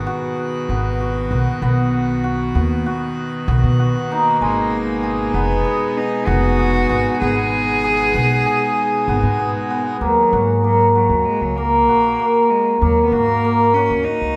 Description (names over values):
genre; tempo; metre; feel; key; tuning
contemporary instrumental, chamber music in an uneven meter; 193 BPM (eighths); 9/8; straight; Eb minor; A4 = 440 Hz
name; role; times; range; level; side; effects
pipe organ, full organ; sustained chords; 0.0-10.0 s; B2 to F#4; -28 LUFS; equal; none
cimbalom; arpeggios; 0.0-14.4 s; Ab3 to Ab4; -20 LUFS; equal; none
upright bass; bass; 0.0-14.4 s; F1 to B2; -23 LUFS; equal; none
bright cello; melody; 4.1-14.4 s; Gb3 to Ab4; -24 LUFS; equal; none
room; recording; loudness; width
wet recital hall reverb, RT60 1.5 s; none; -17 LUFS; mono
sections
0.0-10.0 A section; 10.0-14.4 B section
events
none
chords
0.0 B; 4.4 Abm; 10.0 Ebm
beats
0.07 0.38 0.69 1.00 1.31 | 1.62 1.93 2.25 2.56 2.87 3.18 3.49 3.80 4.11 | 4.42 4.73 5.04 5.35 5.66 5.97 6.28 6.59 6.90 | 7.21 7.53 7.84 8.15 8.46 8.77 9.08 9.39 9.70 | 10.01 10.32 10.64 10.95 11.26 11.57 11.88 12.19 12.51 | 12.82 13.13 13.44 13.75 14.06